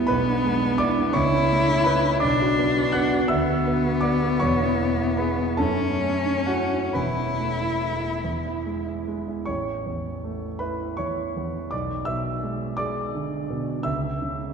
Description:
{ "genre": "classical, romantic duo for cello and grand piano", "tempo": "42-58 BPM (dotted quarters)", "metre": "6/8", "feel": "rubato", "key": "A major", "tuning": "A4 = 440 Hz", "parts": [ { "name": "rich cello", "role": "melody", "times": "0.0-8.9 s", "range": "B3 to E4", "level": "-24 LUFS", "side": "left 2 dB", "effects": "none" }, { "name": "warm concert grand piano", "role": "accompaniment", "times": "0.0-14.5 s", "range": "E1 to F#6", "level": "-24 LUFS", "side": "right 1 dB", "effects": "none" } ], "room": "wet church reverb, RT60 3.3 s", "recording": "dark, warm production", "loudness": "-22 LUFS", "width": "side -6 dB against mid", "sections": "0.0-9.5 A section; 9.5-14.5 B section", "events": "none", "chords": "0.1 E7/B; 1.2 A/C#; 2.2 Bm; 3.3 Bm/D; 4.4 E; 5.6 F#m7; 6.9 Esus4; 8.2 E; 9.5 A; 11.7 G#dim/B; 13.9 A/C# (rootless)", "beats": "| 0.09 1.15 | 2.22 3.29 | 4.41 5.58 | 6.95 8.24 | 9.47 10.61 | 11.72 12.78 | 13.86" }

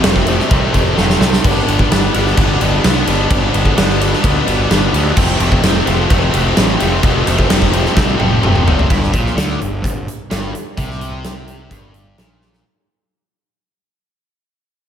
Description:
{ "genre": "classic rock", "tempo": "129 BPM", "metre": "4/4", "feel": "straight", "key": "G mixolydian", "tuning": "A4 = 438 Hz", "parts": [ { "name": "distorted electric guitar", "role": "riff", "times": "0.0-12.6 s", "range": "F2 to D4", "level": "-17 LUFS", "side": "left 1 dB", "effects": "overdrive" }, { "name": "fuzz picked electric bass", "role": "bass", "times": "0.0-12.6 s", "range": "F1 to D2", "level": "-18 LUFS", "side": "equal", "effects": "overdrive" }, { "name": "huge arena drum kit", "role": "drums", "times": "0.0-12.6 s", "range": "crash cymbal, hi-hat, kick drum, ride cymbal, snare drum, toms", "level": "-15 LUFS", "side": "equal", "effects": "none" } ], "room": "light reverb, small room ambience", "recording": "none", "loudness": "-11 LUFS", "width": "side -9 dB against mid", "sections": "0.0-8.9 A section; 8.9-12.6 B section", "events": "drum fill 1.0-1.4, 8.0-8.9, 12.4; fade-out 8.9-12.6", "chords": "0.0 F; 1.4 G; 5.2 F; 8.9 G5", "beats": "0.04 0.50 0.97 | 1.44 1.90 2.37 2.83 | 3.30 3.77 4.23 4.70 | 5.17 5.63 6.10 6.56 | 7.03 7.49 7.96 8.43 | 8.89 9.36 9.83 10.30 | 10.77 11.23 11.70 12.17" }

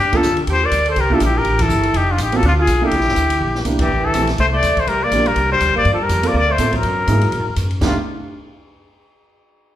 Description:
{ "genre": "jazz, small-group swing and bop", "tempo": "245 BPM", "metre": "4/4", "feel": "swing 57% on 8ths", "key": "unclear", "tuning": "A4 = 440 Hz", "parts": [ { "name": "trumpet with straight mute", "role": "melody", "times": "0.0-8.0 s", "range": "F4 to D5", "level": "-18 LUFS", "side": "left 3 dB", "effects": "none" }, { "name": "bright alto saxophone", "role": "second line", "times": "0.0-7.9 s", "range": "E3 to Bb4", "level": "-22 LUFS", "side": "right 1 dB", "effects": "none" }, { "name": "upright bass", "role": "bass", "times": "0.0-7.9 s", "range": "F1 to Bb2", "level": "-20 LUFS", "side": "equal", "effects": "none" }, { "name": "warm grand piano", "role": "accompaniment", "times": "0.1-7.9 s", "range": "A3 to A4", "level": "-23 LUFS", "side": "right 3 dB", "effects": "none" }, { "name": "open jazz drum kit", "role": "drums", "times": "0.1-7.9 s", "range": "crash cymbal, hi-hat, kick drum, ride cymbal, snare drum", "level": "-26 LUFS", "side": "equal", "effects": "none" } ], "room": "wet recital hall reverb, RT60 1.3 s", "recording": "recorded in a church or concert hall", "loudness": "-14 LUFS", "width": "side -12 dB against mid", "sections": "0.0-3.9 A section; 3.9-7.8 B section", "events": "band accent 0.1, 1.6, 3.8", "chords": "0.0 Gm7; 1.0 C7; 1.9 F; 2.4 Dm; 2.9 C9; 3.9 Am7; 4.9 C9sus4; 5.9 Gm11; 6.8 Gb13; 7.8 F13", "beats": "0.23 0.47 0.72 | 0.96 1.21 1.45 1.69 | 1.94 2.18 2.43 2.67 | 2.92 3.16 3.41 3.65 | 3.90 4.14 4.38 4.63 | 4.87 5.12 5.36 5.61 | 5.85 6.10 6.34 6.59 | 6.83 7.08 7.32 7.57 | 7.82" }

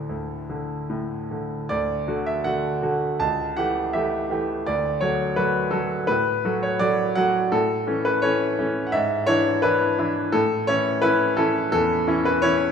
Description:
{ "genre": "classical, romantic character piece for solo piano", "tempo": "83 BPM", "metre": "4/4", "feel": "uneven beats, rubato", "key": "D major", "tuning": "A4 = 440 Hz", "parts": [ { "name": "bright grand piano", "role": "solo", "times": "0.0-12.7 s", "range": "C#2 to A5", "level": "-20 LUFS", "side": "equal", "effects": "none" } ], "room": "wet recital hall reverb, RT60 1.5 s", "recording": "minimal, uncompressed stereo recording", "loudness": "-20 LUFS", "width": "side -7 dB against mid", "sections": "0.0-1.7 A section; 1.7-12.7 B section", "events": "none", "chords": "0.0 D5; 1.7 D; 3.2 A7/C#; 4.7 D; 7.5 A; 8.9 E7/G#; 10.3 A", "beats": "0.08 0.90 | 1.70 2.44 3.19 3.93 | 4.67 5.38 6.09 6.81 | 7.52 8.23 8.94 9.64 | 10.34 11.03 11.72 12.43" }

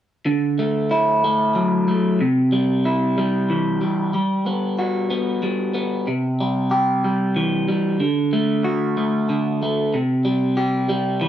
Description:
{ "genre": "rock", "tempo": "62 BPM (dotted quarters)", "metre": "6/8", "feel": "straight", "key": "D mixolydian", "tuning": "A4 = 436 Hz", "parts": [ { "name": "electric guitar through a small old amp", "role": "solo", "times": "0.3-11.3 s", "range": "C3 to G4", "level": "-18 LUFS", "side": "equal", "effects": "phaser" } ], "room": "light reverb", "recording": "band playing live in one room", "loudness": "-18 LUFS", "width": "side -11 dB against mid", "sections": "0.3-11.3 A section", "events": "none", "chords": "0.3 Dadd9; 2.2 C; 4.1 Gmaj7; 6.1 C; 8.0 D; 9.9 C5", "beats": "| 0.26 1.23 | 2.20 3.17 | 4.14 5.11 | 6.08 7.04 | 8.01 8.97 | 9.94 10.91" }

